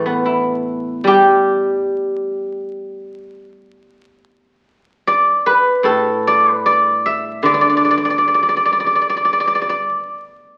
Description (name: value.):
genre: chinese traditional, Chinese solo plucked strings.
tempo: 75 BPM.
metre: 4/4.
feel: rubato.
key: D zhi mode.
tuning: A4 = 440 Hz.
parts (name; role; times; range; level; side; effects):
guzheng; solo; 0.0-10.6 s; A2 to E5; -16 LUFS; equal; none.
room: wet large studio reverb, RT60 1.4 s.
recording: very old 78 rpm record, vinyl crackle.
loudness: -16 LUFS.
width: mono.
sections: 0.0-10.6 A section.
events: none.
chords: none.